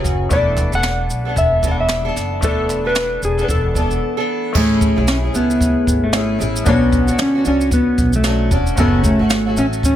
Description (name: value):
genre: acoustic pop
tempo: 113 BPM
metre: 4/4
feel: swing 60% on 16ths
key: A major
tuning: A4 = 436 Hz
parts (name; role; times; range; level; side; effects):
- bright concert grand piano; accompaniment; 0.0-10.0 s; A3 to C#5; -29 LUFS; left 6 dB; none
- fingerpicked acoustic archtop guitar; accompaniment; 0.0-10.0 s; F#2 to A4; -22 LUFS; left 1 dB; double-tracked left and right
- upright bass; bass; 0.0-10.0 s; E1 to D2; -21 LUFS; equal; none
- jazz brush drum kit; drums; 0.0-10.0 s; crash cymbal, kick drum, shaker, snare drum; -20 LUFS; equal; none
- clean lap steel guitar; melody; 0.3-10.0 s; A3 to F#5; -18 LUFS; equal; tape echo
- group handclap; percussion; 0.6-3.1 s; none; -33 LUFS; right 3 dB; none
room: light reverb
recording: none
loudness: -14 LUFS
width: side -11 dB against mid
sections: 0.0-4.5 A section; 4.5-10.0 B section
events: break 4.0-4.5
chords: 0.3 E7sus4; 4.5 Amaj7; 6.7 Bmadd9; 8.8 F#m